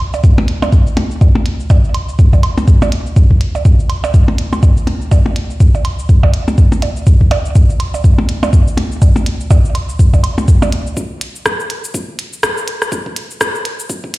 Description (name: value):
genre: techno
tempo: 123 BPM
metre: 4/4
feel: swing 58% on 16ths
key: none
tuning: none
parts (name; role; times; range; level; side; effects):
- minimal click drum kit; drums; 0.1-14.2 s; cabasa, hi-hat, rim click; -21 LUFS; equal; high-pass filter on perc, low-pass filter on perc, small room ambience, high-pass filter on hats, low-pass filter on hats, high-pass filter on snare, low-pass filter on snare
- percussion blips and woodblock; percussion; 0.1-10.7 s; none; -19 LUFS; right 1 dB; overdrive, small room ambience, dub echo
- electronic kick drum; drums; 0.2-14.1 s; none; -9 LUFS; equal; high-pass filter on kick, small room ambience
room: little or no reverb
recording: played on a big sound system in a bare room, large studio reverb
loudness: -10 LUFS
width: side -19 dB against mid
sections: 0.0-11.0 A section; 11.0-14.2 B section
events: build-up 11.0-14.2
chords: none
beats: 0.24 0.72 | 1.21 1.70 2.19 2.68 | 3.16 3.65 4.14 4.63 | 5.12 5.60 6.09 6.58 | 7.07 7.55 8.04 8.53 | 9.02 9.51 9.99 10.48 | 10.97 11.46 11.95 12.43 | 12.92 13.41 13.90